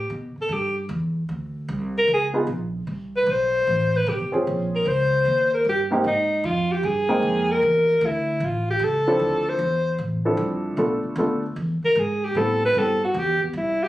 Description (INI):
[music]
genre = jazz, small-group swing and bop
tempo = 152 BPM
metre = 4/4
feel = swing 67% on 8ths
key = unclear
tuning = A4 = 439 Hz
[part]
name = breathy alto saxophone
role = melody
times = 0.0-13.9 s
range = B3 to C5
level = -21 LUFS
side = equal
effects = none
[part]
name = upright bass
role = bass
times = 0.0-13.9 s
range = E1 to B2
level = -28 LUFS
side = equal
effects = none
[part]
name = warm upright piano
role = accompaniment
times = 2.3-13.0 s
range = Ab2 to G5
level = -23 LUFS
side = equal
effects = none
[sound]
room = light reverb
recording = recorded on a phone in the room, studio ambience, compression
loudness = -20 LUFS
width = side -15 dB against mid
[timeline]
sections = 0.0-6.0 A section; 6.0-13.9 B section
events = none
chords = 0.0 Asus2 (rootless); 1.3 Bbadd9 (rootless); 2.1 Db9; 2.9 Cmaj7(no3); 4.5 Bbm7; 5.2 Eb6; 6.0 Abmaj9; 7.6 Dsus2; 8.4 A; 9.2 Dm9; 10.8 Bm7b5; 11.6 E; 12.4 Am9